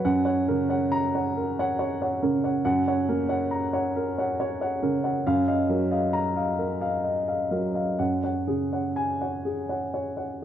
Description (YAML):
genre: neoclassical minimalist piano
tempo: 61-71 BPM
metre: 3/4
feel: rubato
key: F# major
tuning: A4 = 440 Hz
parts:
  - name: dark grand piano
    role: solo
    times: 0.0-10.4 s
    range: F#2 to A#5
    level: -23 LUFS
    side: equal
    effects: none
room: moderate recital hall reverb, RT60 1.5 s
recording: dark, warm production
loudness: -23 LUFS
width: side -10 dB against mid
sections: 0.0-10.4 A section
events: none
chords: 0.0 F#; 5.2 D#madd9/F#; 8.0 F#sus2